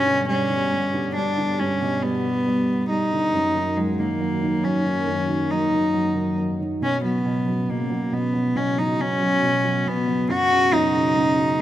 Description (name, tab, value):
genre	pop ballad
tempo	69 BPM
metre	4/4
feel	straight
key	B major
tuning	A4 = 440 Hz
part	rich cello	melody	0.0-11.6 s	G#3 to F#4	-21 LUFS	left 1 dB	none
part	felt-muted upright piano	accompaniment	0.0-11.6 s	F#2 to G3	-25 LUFS	right 3 dB	none
part	lush unison pad	sustained chords	0.0-11.6 s	F#2 to A#3	-28 LUFS	left 1 dB	chorus
room	light reverb, studio ambience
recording	rough home demo mix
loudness	-19 LUFS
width	side -12 dB against mid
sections	0.0-11.6 A section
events	none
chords	0.0 G; 3.3 D#m/F#; 6.8 Bsus2; 10.3 F#sus4